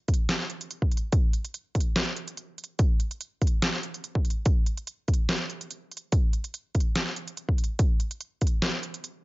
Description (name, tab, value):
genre	future bass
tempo	144 BPM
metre	4/4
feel	swing 54% on 16ths, half-time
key	none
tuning	none
part	dubstep drum kit	drums	0.1-9.1 s	hi-hat, snare drum	-29 LUFS	equal	none
part	electronic kick drum	drums	0.1-8.5 s	none	-23 LUFS	equal	none
room	little or no reverb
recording	nothing above 7.5 kHz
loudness	-25 LUFS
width	side -20 dB against mid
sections	0.0-9.2 A section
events	none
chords	none